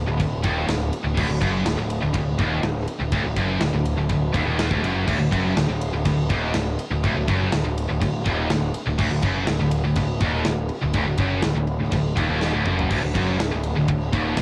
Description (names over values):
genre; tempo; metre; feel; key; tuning
heavy metal; 123 BPM; 4/4; straight; unclear; A4 = 440 Hz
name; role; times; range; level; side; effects
high-gain distorted guitar; riff; 0.0-14.4 s; D2 to F#2; -31 LUFS; equal; none
scooped high-gain guitar; riff; 0.0-14.4 s; D2 to F#2; -30 LUFS; equal; distortion
scooped high-gain guitar; riff; 0.0-14.4 s; D2 to F#2; -30 LUFS; equal; distortion
fuzz picked electric bass; bass; 0.0-14.4 s; D1 to F#1; -28 LUFS; equal; overdrive
tight metal drum kit; drums; 0.2-14.4 s; crash cymbal, kick drum, ride cymbal, snare drum, toms; -29 LUFS; equal; cassette tape
room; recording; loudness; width
studio reverb; home recording on cassette; -23 LUFS; mono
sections
0.0-12.9 A section; 12.9-14.4 A section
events
drum fill 12.4-12.9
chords
0.0 D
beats
0.20 0.68 | 1.17 1.66 2.15 2.64 | 3.12 3.61 4.10 4.59 | 5.08 5.57 6.05 6.54 | 7.03 7.52 8.01 8.50 | 8.99 9.48 9.97 10.46 | 10.95 11.44 11.93 12.42 | 12.90 13.39 13.88 14.37